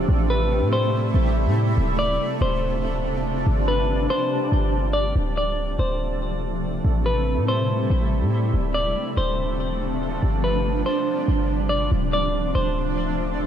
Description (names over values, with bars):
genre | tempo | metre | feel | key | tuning
hip hop, atmospheric cloud-rap | 142 BPM | 4/4 | half-time | D dorian | A4 = 440 Hz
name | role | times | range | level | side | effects
semi-hollow electric guitar | melody | 0.0-13.5 s | B4 to D5 | -26 LUFS | left 1 dB | ping-pong delay
shimmering ambient pad | sustained chords | 0.0-13.5 s | C3 to E4 | -25 LUFS | right 1 dB | chorus, built-in reverb
clean 808-style bass | bass | 0.0-13.5 s | D1 to A2 | -23 LUFS | equal | none
room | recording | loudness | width
light reverb | none | -20 LUFS | side -9 dB against mid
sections
0.0-5.2 A section; 5.2-11.9 B section; 11.9-13.5 C section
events
none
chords
0.1 Am7; 1.8 Dm7; 3.5 G7sus4; 5.2 Dm7; 6.8 Am7; 8.5 Dm7; 10.2 G7sus4; 11.9 Dm7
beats
| 0.09 0.51 0.93 1.35 | 1.78 2.20 2.62 3.04 | 3.47 3.89 4.31 4.73 | 5.16 5.58 6.00 6.42 | 6.85 7.27 7.69 8.11 | 8.54 8.96 9.38 9.80 | 10.23 10.65 11.07 11.49 | 11.92 12.34 12.76 13.19